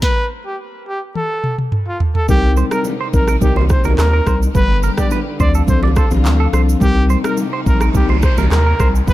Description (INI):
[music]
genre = afrobeats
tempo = 106 BPM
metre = 4/4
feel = straight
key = C dorian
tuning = A4 = 440 Hz
[part]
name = breathy trumpet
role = melody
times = 0.0-9.1 s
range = F4 to D5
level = -22 LUFS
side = equal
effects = tape echo
[part]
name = afro-pop drum kit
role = drums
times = 0.0-9.1 s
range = handclaps, kick drum, rim click, shaker, snare drum, toms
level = -17 LUFS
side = equal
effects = none
[part]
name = mellow tine electric piano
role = accompaniment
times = 2.3-9.1 s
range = F3 to B4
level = -21 LUFS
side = left 5 dB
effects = phaser
[part]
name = warm studio string section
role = sustained chords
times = 2.3-9.1 s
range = C3 to G4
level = -27 LUFS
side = left 1 dB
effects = none
[part]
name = round analog bass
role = bass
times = 2.3-9.1 s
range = G1 to Eb2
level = -15 LUFS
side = equal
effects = none
[part]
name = congas and bongos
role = percussion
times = 2.3-9.1 s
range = none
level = -25 LUFS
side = right 4 dB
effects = none
[part]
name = clean electric guitar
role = riff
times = 2.6-8.9 s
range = G4 to D5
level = -25 LUFS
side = right 7 dB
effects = none
[part]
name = noise sweep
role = sound effects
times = 7.4-9.1 s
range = none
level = -29 LUFS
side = right 2 dB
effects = none
[sound]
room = little or no reverb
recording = dark, warm production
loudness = -13 LUFS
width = side -15 dB against mid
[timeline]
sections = 0.0-2.3 A section; 2.3-9.1 B section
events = stop 0.0-2.3; drum fill 1.2-2.3; noise sweep 7.4-9.1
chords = 0.0 N.C.; 2.3 Cm7; 4.6 G; 5.4 Dm7; 6.8 Cm7